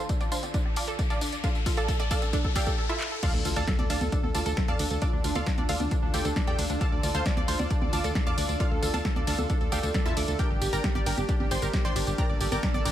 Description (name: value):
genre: uplifting trance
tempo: 134 BPM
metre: 4/4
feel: straight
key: D minor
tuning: A4 = 439 Hz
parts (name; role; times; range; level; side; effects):
- wide unison pluck; melody; 0.0-12.9 s; D4 to D6; -33 LUFS; right 1 dB; sidechain pumping, tape echo
- lush unison pad; sustained chords; 0.0-12.9 s; D2 to A4; -37 LUFS; equal; chorus, sidechain pumping
- analog pluck; arpeggios; 0.0-12.9 s; D4 to A5; -36 LUFS; right 2 dB; chorus, sidechain pumping, dub echo
- riser and impact; sound effects; 0.1-5.0 s; none; -37 LUFS; left 2 dB; none
- electronic kick drum; drums; 0.1-12.7 s; none; -28 LUFS; equal; none
- punchy analog drum machine; drums; 0.1-12.9 s; congas, crash cymbal, handclaps, hi-hat, ride cymbal, snare drum, tambourine; -34 LUFS; equal; high-pass filter on hats, high-pass filter on perc, high-pass filter on snare, high-pass filter on cymbals
- plucky unison lead; second line; 3.2-12.9 s; D4 to D6; -37 LUFS; equal; sidechain pumping, dub echo
- solid FM bass; bass; 3.3-12.9 s; G1 to E2; -31 LUFS; equal; sidechain pumping
room: little or no reverb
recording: none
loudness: -24 LUFS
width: side -12 dB against mid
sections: 0.0-3.2 A section; 3.2-12.9 B section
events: build-up 0.0-3.2; drum fill 0.0-2.8, 3.0; filter sweep on synth arpeggio sound 0.0-3.2; riser 0.1-3.2; break 2.8-3.2; drop 3.2-12.9; impact 3.2-5.0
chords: 0.0 Dm; 10.4 Gm